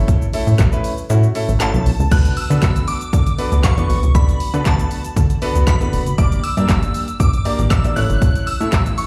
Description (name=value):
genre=dance-pop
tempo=118 BPM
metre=4/4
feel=straight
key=D major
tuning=A4 = 441 Hz
part: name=clear concert grand piano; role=accompaniment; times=0.0-9.1 s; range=A3 to D5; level=-27 LUFS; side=equal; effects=sidechain pumping, slapback echo
part: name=plucky analog bass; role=bass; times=0.0-8.9 s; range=E1 to D3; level=-19 LUFS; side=equal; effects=sidechain pumping
part: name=deep house drum kit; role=drums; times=0.1-9.1 s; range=crash cymbal, handclaps, hi-hat, kick drum, shaker, snare drum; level=-20 LUFS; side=equal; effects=none
part: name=shimmering bell with halo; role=melody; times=1.6-9.1 s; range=A5 to F#6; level=-28 LUFS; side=equal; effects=ensemble chorus, tape echo, slapback echo
room=little or no reverb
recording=live gig heard through the venue's PA, club reverb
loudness=-17 LUFS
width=mono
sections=0.0-2.1 A section; 2.1-9.1 B section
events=kick muted 1.1-2.1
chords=0.0 A; 2.1 D6; 6.2 Gm; 8.0 A